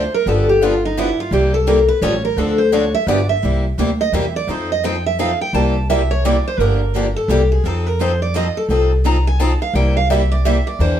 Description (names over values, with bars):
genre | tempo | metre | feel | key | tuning
acoustic string swing (jazz manouche) | 171 BPM | 3/4 | swing 61% on 8ths | C mixolydian | A4 = 439 Hz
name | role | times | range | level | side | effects
picked steel-string acoustic guitar | melody | 0.0-11.0 s | Eb4 to Bb5 | -18 LUFS | right 1 dB | none
picked steel-string acoustic guitar | accompaniment | 0.0-11.0 s | C3 to Bb4 | -26 LUFS | right 4 dB | none
picked swing-style acoustic guitar | accompaniment | 0.0-11.0 s | C3 to A4 | -23 LUFS | left 3 dB | none
upright bass | bass | 0.0-11.0 s | G1 to F2 | -18 LUFS | equal | none
room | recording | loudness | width
wet studio reverb, RT60 0.6 s | band playing live in one room | -14 LUFS | side -10 dB against mid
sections
0.0-3.4 A section; 3.4-11.0 A section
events
steel-string acoustic guitar solo 0.0-11.0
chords
0.3 G7; 1.3 C7; 2.0 Aaug7; 2.4 Dm7; 3.1 G7; 3.4 C7; 4.5 F7; 5.5 C7; 6.6 Gm7; 7.3 C7; 7.6 F7; 9.8 C7